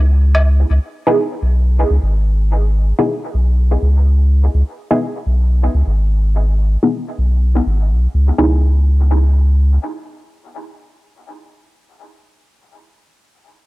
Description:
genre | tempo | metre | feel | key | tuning
dub techno | 125 BPM | 4/4 | straight | C# minor | A4 = 441 Hz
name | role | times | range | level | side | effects
warm sub bass | bass | 0.0-9.8 s | G#1 to C#2 | -12 LUFS | equal | transformer saturation
filtered dub chord stab | stabs | 1.1-12.3 s | B3 to G#4 | -19 LUFS | equal | phaser, cassette tape, dub echo
room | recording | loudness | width
little or no reverb | dry, gritty hardware recording, cassette tape | -13 LUFS | side -20 dB against mid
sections
0.0-8.4 A section; 8.4-12.2 B section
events
filter sweep on synth stab 0.0-8.4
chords
0.0 C#m7

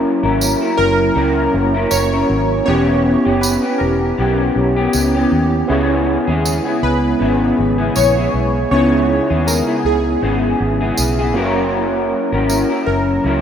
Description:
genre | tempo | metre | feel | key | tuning
indie pop, bedroom pop | 79 BPM | 4/4 | swing 55% on 16ths | unclear | A4 = 441 Hz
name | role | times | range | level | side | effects
electric guitar through a small old amp | accompaniment | 0.0-13.4 s | C#3 to A#4 | -17 LUFS | left 2 dB | analog chorus, vibrato effect
overdriven tine electric piano | accompaniment | 0.0-13.4 s | A#3 to C#5 | -22 LUFS | right 4 dB | fast tremolo, cassette tape
hollow soft pad | sustained chords | 0.0-13.4 s | C#3 to A#4 | -23 LUFS | right 1 dB | chorus
vintage muted fingered electric bass | bass | 0.0-13.4 s | E1 to D#2 | -20 LUFS | equal | none
tambourine | percussion | 0.4-12.7 s | none | -26 LUFS | right 4 dB | none
warm analog keys | melody | 0.8-13.4 s | G#4 to C#5 | -21 LUFS | equal | phaser, analog chorus, analog delay
room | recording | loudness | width
wet lush hall reverb, RT60 2.9 s | rough home demo mix | -13 LUFS | side -8 dB against mid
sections
0.0-13.4 A section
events
none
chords
0.0 F#7; 2.7 Em6; 5.7 C#m7; 11.4 F#7

